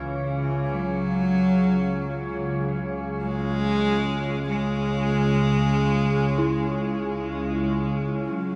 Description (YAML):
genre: dark ambient drone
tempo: 48 BPM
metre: 4/4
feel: straight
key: C# minor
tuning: A4 = 440 Hz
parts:
  - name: organ-like drone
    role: drone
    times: 0.0-8.6 s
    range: C#2 to C#3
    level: -28 LUFS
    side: equal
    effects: ensemble chorus, built-in reverb
  - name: rich cello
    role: melody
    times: 0.7-8.6 s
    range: F#3 to G#3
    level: -27 LUFS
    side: equal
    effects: shimmer reverb, diffuse ambient delay
  - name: dark detuned synth bell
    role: arpeggios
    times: 6.4-8.6 s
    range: E4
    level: -32 LUFS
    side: equal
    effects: chorus, shimmer reverb, diffuse ambient delay
room: wet huge ambient reverb, RT60 9.0 s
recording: nothing above 10.7 kHz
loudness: -24 LUFS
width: mono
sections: 0.0-8.6 A section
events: none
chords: 0.0 C#5